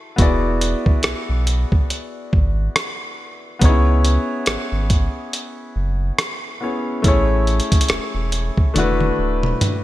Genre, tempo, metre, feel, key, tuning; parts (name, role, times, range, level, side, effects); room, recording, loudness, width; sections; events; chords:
contemporary R&B; 70 BPM; 4/4; swing 58% on 16ths; A4 = 438 Hz
clear concert grand piano; accompaniment; 0.0-9.8 s; A3 to D5; -22 LUFS; left 2 dB
warm sub bass; bass; 0.2-9.5 s; D1 to C#2; -19 LUFS; equal
dusty soul sampler-style drum kit; drums; 0.2-9.8 s; hi-hat, kick drum, rim click, toms; -18 LUFS; equal
light reverb; bright 1980s-style digital production; -16 LUFS; side -15 dB against mid
0.0-9.8 A section
drum fill 8.8-9.8
0.2 E9; 3.6 C#m7; 7.0 Amaj7; 8.8 E9sus4